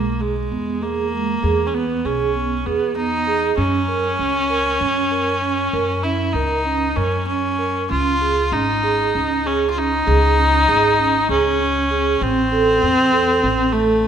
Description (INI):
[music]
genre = contemporary instrumental, chamber music in an uneven meter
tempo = 196 BPM (eighths)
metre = 7/8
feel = straight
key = unclear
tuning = A4 = 440 Hz
[part]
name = bright viola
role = second line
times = 0.0-14.1 s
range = G#3 to E#4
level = -19 LUFS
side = left 1 dB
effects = none
[part]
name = vibraphone with soft mallets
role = arpeggios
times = 0.0-14.1 s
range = G#3 to A#4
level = -21 LUFS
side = right 5 dB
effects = none
[part]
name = upright bass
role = bass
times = 0.0-14.1 s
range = G#1 to F#2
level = -24 LUFS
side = left 1 dB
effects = none
[sound]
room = moderate concert hall reverb, RT60 1.7 s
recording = none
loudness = -16 LUFS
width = side -8 dB against mid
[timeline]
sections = 0.0-14.1 A section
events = none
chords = 0.0 E; 3.6 F#; 7.9 C#5; 12.2 Am